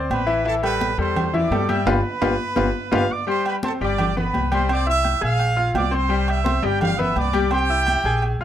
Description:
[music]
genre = latin, salsa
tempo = 170 BPM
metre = 4/4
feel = straight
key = C major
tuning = A4 = 442 Hz
[part]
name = bright grand piano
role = accompaniment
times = 0.0-8.4 s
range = E3 to Ab6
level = -23 LUFS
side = left 3 dB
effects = none
[part]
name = upright bass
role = bass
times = 0.0-8.4 s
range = G1 to G2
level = -24 LUFS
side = equal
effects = none
[part]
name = bright trumpet section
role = melody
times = 0.1-8.3 s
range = G4 to E6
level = -24 LUFS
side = right 3 dB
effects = none
[part]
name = agogo bells and timbales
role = percussion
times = 0.1-8.4 s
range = none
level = -28 LUFS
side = right 6 dB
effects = none
[part]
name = congas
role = percussion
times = 0.1-8.4 s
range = none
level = -27 LUFS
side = left 2 dB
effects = none
[sound]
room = light reverb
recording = rough home demo mix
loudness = -18 LUFS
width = side -10 dB against mid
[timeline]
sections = 0.0-3.3 A section; 3.3-8.4 B section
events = band accent 1.9-3.3; drum fill 2.2-3.3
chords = 0.5 Am7; 1.9 G7; 3.3 C5; 4.0 G; 4.7 C; 5.4 Bb7; 6.1 C; 6.8 G7; 7.5 C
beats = 0.10 | 0.45 0.81 1.16 1.51 | 1.87 2.22 2.58 2.93 | 3.28 3.63 3.99 4.34 | 4.69 5.05 5.40 5.75 | 6.11 6.46 6.81 7.16 | 7.52 7.87 8.22

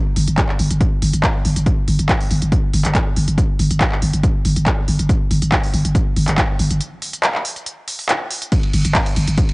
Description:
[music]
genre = driving peak-time techno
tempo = 140 BPM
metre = 4/4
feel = straight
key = unclear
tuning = A4 = 440 Hz
[part]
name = growling 808-style bass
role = bass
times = 0.2-9.4 s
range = G1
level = -18 LUFS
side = equal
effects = tube saturation, sidechain pumping, low-pass filter
[part]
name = techno drum kit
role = drums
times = 0.2-9.5 s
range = handclaps, hi-hat, ride cymbal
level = -21 LUFS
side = equal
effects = cassette tape
[part]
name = electronic kick drum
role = drums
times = 0.4-9.5 s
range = none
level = -18 LUFS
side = equal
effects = cassette tape
[sound]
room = little or no reverb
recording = home recording on cassette, nothing above 10.5 kHz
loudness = -15 LUFS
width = side -26 dB against mid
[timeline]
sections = 0.0-9.5 A section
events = break 6.8-8.5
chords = none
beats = 0.38 0.81 1.24 | 1.66 2.09 2.52 2.95 | 3.38 3.81 4.24 4.66 | 5.09 5.52 5.95 6.38 | 6.81 7.24 7.66 8.09 | 8.52 8.95 9.38

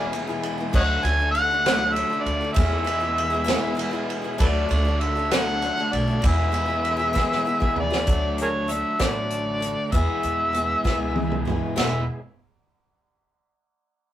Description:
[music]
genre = folk rock and heartland rock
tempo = 65 BPM (dotted quarters)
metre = 6/8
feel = straight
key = E mixolydian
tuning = A4 = 437 Hz
[part]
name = overdriven harmonica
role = melody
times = 0.0-12.1 s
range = G#4 to G#5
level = -24 LUFS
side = equal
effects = none
[part]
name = picked steel-string acoustic guitar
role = accompaniment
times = 0.0-12.0 s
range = D3 to A4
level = -30 LUFS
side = left 4 dB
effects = none
[part]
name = bright tonewheel organ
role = sustained chords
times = 0.0-12.2 s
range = G#3 to B4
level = -36 LUFS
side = equal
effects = none
[part]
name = overdriven electric guitar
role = riff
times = 0.0-12.0 s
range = E2 to G#4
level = -31 LUFS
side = right 1 dB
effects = none
[part]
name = unplugged drum kit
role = drums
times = 0.1-11.9 s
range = crash cymbal, hi-hat, kick drum, ride cymbal, snare drum, toms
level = -26 LUFS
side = right 1 dB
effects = none
[part]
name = upright bass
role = bass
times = 0.7-12.1 s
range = E1 to E2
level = -27 LUFS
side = equal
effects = none
[sound]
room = light reverb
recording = rough rehearsal-room recording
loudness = -20 LUFS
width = side -12 dB against mid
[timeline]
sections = 0.0-8.1 A section; 8.1-11.8 B section; 11.8-13.6 C section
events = drum fill 7.2-8.1, 10.9-11.8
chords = 0.0 E; 0.7 D; 2.6 E; 4.4 D; 6.2 E; 8.1 D; 9.9 E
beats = | 0.74 1.66 | 2.57 3.49 | 4.41 5.32 | 6.24 7.16 | 8.08 9.01 | 9.93 10.85 | 11.77

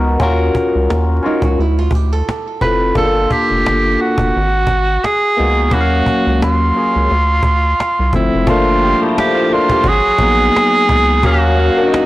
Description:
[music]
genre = R&B, neo-soul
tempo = 87 BPM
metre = 4/4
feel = swing 53% on 16ths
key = unclear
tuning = A4 = 440 Hz
[part]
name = barky tine electric piano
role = accompaniment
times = 0.0-12.1 s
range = F3 to F5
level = -16 LUFS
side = left 2 dB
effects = phaser
[part]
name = rubbery square bass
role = bass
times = 0.0-11.7 s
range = F1 to Eb2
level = -16 LUFS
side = equal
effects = transformer saturation
[part]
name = cajon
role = drums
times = 0.1-12.1 s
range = none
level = -22 LUFS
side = equal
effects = none
[part]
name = nylon-string guitar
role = second line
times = 1.3-2.9 s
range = Eb4 to A4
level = -22 LUFS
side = right 5 dB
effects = tape echo
[part]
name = warm tenor saxophone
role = melody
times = 2.6-12.1 s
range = E4 to B4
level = -14 LUFS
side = right 2 dB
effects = none
[part]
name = tonewheel organ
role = sustained chords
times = 8.5-12.1 s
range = Gb4 to Cb6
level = -27 LUFS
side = equal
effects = slow rotary speaker, chorus vibrato
[part]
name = warm horn section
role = stabs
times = 8.8-12.1 s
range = Eb3 to F5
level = -23 LUFS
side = right 3 dB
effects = none
[sound]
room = light reverb, small room ambience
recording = blown-out, overdriven recording, vinyl crackle, overdrive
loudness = -11 LUFS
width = side -17 dB against mid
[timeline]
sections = 0.0-8.5 A section; 8.5-12.1 B section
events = none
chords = 0.2 Ebm9; 1.6 Dm9; 3.0 Gm9; 4.3 Abm9; 5.7 Ebm9; 7.1 Dm9; 8.5 Gm9; 9.9 Abm9; 11.2 Ebm9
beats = | 0.20 0.89 1.58 2.27 | 2.96 3.65 4.34 5.03 | 5.71 6.41 7.09 7.78 | 8.47 9.16 9.85 10.54 | 11.23 11.92

